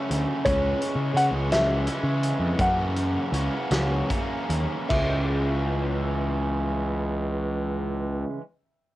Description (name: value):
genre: indie rock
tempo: 49-57 BPM (dotted quarters)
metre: 6/8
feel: straight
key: C# minor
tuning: A4 = 440 Hz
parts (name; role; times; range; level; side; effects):
- raw garage guitar; riff; 0.0-8.4 s; F#2 to C#4; -29 LUFS; right 1 dB; overdrive
- fuzz picked electric bass; bass; 0.1-8.2 s; C#2 to C#3; -26 LUFS; equal; overdrive
- loose indie drum kit; drums; 0.1-5.1 s; crash cymbal, hi-hat, kick drum, snare drum; -30 LUFS; equal; cassette tape
- dark upright piano; melody; 0.4-8.2 s; C#5 to F#5; -27 LUFS; left 1 dB; cassette tape
room: little or no reverb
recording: home recording on cassette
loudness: -23 LUFS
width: side -16 dB against mid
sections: 0.0-4.9 A section; 4.9-9.0 B section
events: slowing down 0.5-4.9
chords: 0.5 C#m; 2.6 F#7; 4.9 C#m